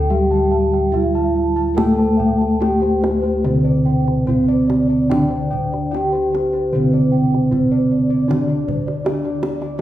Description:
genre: Javanese gamelan.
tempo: 72-82 BPM.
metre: 4/4.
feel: straight.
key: D slendro.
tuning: A4 = 438 Hz.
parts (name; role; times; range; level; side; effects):
gamelan-type bronze metallophone; melody; 0.0-9.8 s; C4-25c to A4; -19 LUFS; right 1 dB; none.
gamelan-type bronze metallophone; accompaniment; 0.0-9.8 s; C3-25c to A3; -21 LUFS; left 1 dB; none.
gamelan-type bossed gongs; arpeggios; 0.0-9.8 s; C5-25c to A5; -28 LUFS; left 4 dB; none.
gamelan-type bronze metallophone; arpeggios; 0.0-9.8 s; C5-25c to A5; -28 LUFS; right 2 dB; none.
gamelan-type bossed gongs; bass; 0.0-9.8 s; D2 to A4; -22 LUFS; left 1 dB; none.
kendang; percussion; 0.7-9.8 s; none; -27 LUFS; right 2 dB; none.
room: wet recital hall reverb, RT60 1.3 s.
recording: recorded in a church or concert hall.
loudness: -15 LUFS.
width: side -13 dB against mid.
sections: 0.0-9.8 A section.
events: none.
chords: none.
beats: 0.11 0.94 | 1.78 2.61 3.44 4.28 | 5.11 5.93 6.74 7.53 | 8.30 9.06 9.80.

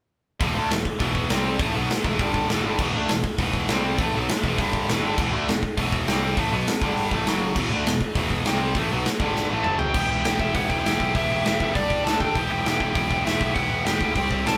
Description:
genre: punk rock.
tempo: 201 BPM.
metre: 4/4.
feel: straight.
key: E minor.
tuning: A4 = 442 Hz.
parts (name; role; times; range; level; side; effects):
tight distorted guitar; riff; 0.4-14.6 s; E2 to D5; -27 LUFS; equal; distortion.
fuzz picked electric bass; bass; 0.4-14.6 s; E1 to D#2; -32 LUFS; equal; overdrive.
big rock drum kit; drums; 0.4-14.5 s; crash cymbal, hi-hat, kick drum, snare drum, toms; -28 LUFS; equal; none.
biting lead guitar; melody; 9.6-14.6 s; D5 to A5; -28 LUFS; equal; overdrive.
room: light reverb.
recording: band playing live in one room.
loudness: -23 LUFS.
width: mono.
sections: 0.4-9.9 A section; 9.9-14.6 B section.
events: drum fill 9.3-9.9.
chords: 0.4 E5; 1.3 C5; 1.6 E5; 2.2 G5; 2.5 Em; 3.7 C5; 4.0 E5; 4.6 G5; 4.9 Em; 6.1 C5; 6.4 E5; 6.8 G5; 7.1 A5; 7.3 F#5; 7.6 E5; 8.5 C5; 8.8 E5; 9.2 G5; 9.5 A5; 9.6 F#5; 9.9 Em; 11.7 G5; 12.0 D5; 12.3 Em.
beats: | 0.40 0.70 1.00 1.30 | 1.60 1.90 2.20 2.49 | 2.79 3.09 3.39 3.69 | 3.99 4.28 4.58 4.88 | 5.18 5.47 5.77 6.07 | 6.37 6.67 6.96 7.26 | 7.56 7.86 8.16 8.45 | 8.75 9.05 9.35 9.65 | 9.95 10.25 10.55 10.85 | 11.15 11.45 11.75 12.05 | 12.35 12.65 12.95 13.25 | 13.55 13.85 14.15 14.45.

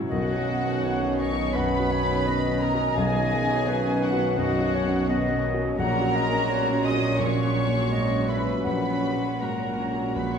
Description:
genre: cinematic, emotional film score for orchestra.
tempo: 84 BPM.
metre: 4/4.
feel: uneven beats, rubato.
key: B major.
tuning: A4 = 443 Hz.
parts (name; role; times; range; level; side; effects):
dark baby grand piano; accompaniment; 0.0-10.4 s; A#1 to Gb4; -29 LUFS; equal; none.
concert harp; arpeggios; 0.0-10.4 s; Gb2 to Fb5; -35 LUFS; left 4 dB; none.
warm studio cello section; bass; 0.0-10.4 s; Ab2 to B2; -31 LUFS; right 3 dB; none.
warm studio violin section; melody; 0.1-10.4 s; F#5 to D#6; -31 LUFS; left 1 dB; none.
mellow clarinet; second line; 0.1-10.4 s; B4 to F#5; -31 LUFS; left 1 dB; none.
warm studio violin section; second line; 0.1-10.4 s; F#4 to D#5; -31 LUFS; left 2 dB; none.
rich studio viola section; accompaniment; 0.1-10.4 s; C#3 to F#4; -34 LUFS; right 4 dB; none.
mellow French horn section; sustained chords; 0.1-10.4 s; D#3 to C#4; -30 LUFS; left 1 dB; none.
dark studio double bass section; bass; 0.1-10.4 s; A#1 to B1; -34 LUFS; right 4 dB; none.
room: wet scoring stage reverb, RT60 1.6 s.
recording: minimal, uncompressed stereo recording.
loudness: -22 LUFS.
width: side -7 dB against mid.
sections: 0.1-10.4 A section.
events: none.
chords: 0.1 Badd9; 5.8 F#/A#.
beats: | 0.11 0.84 1.55 2.26 | 2.97 3.67 4.38 5.08 | 5.79 6.49 7.19 7.91 | 8.66 9.41 10.15.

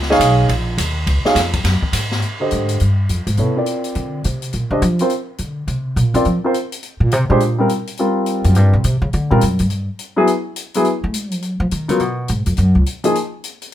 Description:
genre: modal jazz.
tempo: 208 BPM.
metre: 4/4.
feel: swing 62% on 8ths.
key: Bb mixolydian.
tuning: A4 = 440 Hz.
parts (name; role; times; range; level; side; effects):
upright bass; bass; 0.0-12.8 s; Bb1 to A3; -16 LUFS; equal; none.
open jazz drum kit; drums; 0.0-13.7 s; hi-hat, kick drum, ride cymbal, snare drum; -25 LUFS; left 2 dB; none.
warm grand piano; accompaniment; 0.1-13.1 s; D3 to F5; -17 LUFS; equal; none.
room: light reverb.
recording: none.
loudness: -15 LUFS.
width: side -12 dB against mid.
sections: 0.0-2.2 A section; 2.2-11.4 B section; 11.4-13.7 B section.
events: upright bass solo 2.2-13.7.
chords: 0.0 Bbm; 2.2 Bbadd9; 6.8 Gbmaj7#11 (rootless); 10.3 Fdim; 11.4 Db13sus4.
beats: 0.21 0.50 0.79 | 1.07 1.36 1.65 1.94 | 2.23 2.51 2.80 3.09 | 3.38 3.67 3.95 4.24 | 4.53 4.82 5.11 5.39 | 5.68 5.97 6.26 6.54 | 6.83 7.12 7.41 7.69 | 7.98 8.27 8.56 8.84 | 9.13 9.42 9.71 9.99 | 10.28 10.57 10.86 11.14 | 11.43 11.72 12.01 12.29 | 12.58 12.87 13.16 13.45 | 13.73.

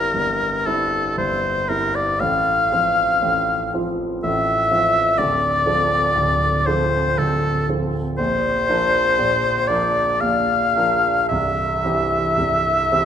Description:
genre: classical, romantic duo for oboe and grand piano.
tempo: 59 BPM.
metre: 3/4.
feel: uneven beats, rubato.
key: F major.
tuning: A4 = 437 Hz.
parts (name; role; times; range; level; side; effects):
clear oboe; melody; 0.0-13.1 s; A4 to F5; -18 LUFS; left 1 dB; none.
warm grand piano; accompaniment; 0.0-13.1 s; C1 to Bb4; -23 LUFS; right 1 dB; none.
room: wet recital hall reverb, RT60 1.7 s.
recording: minimal, uncompressed stereo recording, lossy compression artefacts.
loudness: -17 LUFS.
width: side -8 dB against mid.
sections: 0.0-13.1 A section.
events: none.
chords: 0.0 C7/G; 2.2 F/A; 5.2 Dm7; 8.2 Bb; 11.3 C.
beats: 0.14 1.18 | 2.21 3.23 4.24 | 5.18 6.15 7.18 | 8.19 9.18 10.21 | 11.30 12.38.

